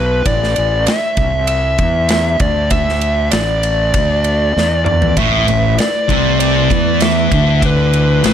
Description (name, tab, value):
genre	stoner and doom metal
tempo	98 BPM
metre	4/4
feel	straight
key	unclear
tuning	A4 = 441 Hz
part	fuzz lead guitar	melody	0.0-8.3 s	B4 to E5	-16 LUFS	left 1 dB	distortion, slapback echo
part	fuzz fingered electric bass	bass	0.0-8.3 s	A1 to E2	-17 LUFS	equal	overdrive
part	big rock drum kit	drums	0.3-8.3 s	kick drum, ride cymbal, snare drum, toms	-19 LUFS	equal	none
part	mellow tonewheel organ	sustained chords	5.2-8.3 s	A3 to B4	-27 LUFS	right 3 dB	slow rotary speaker, chorus vibrato
part	thick fuzz guitar	riff	5.2-8.3 s	A2 to E3	-16 LUFS	left 9 dB	distortion
part	thick fuzz guitar	riff	5.2-8.3 s	A2 to E3	-17 LUFS	right 11 dB	distortion
room	small room ambience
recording	none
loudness	-12 LUFS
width	side -9 dB against mid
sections	0.0-8.3 A section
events	drum fill 4.6-5.2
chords	0.3 A5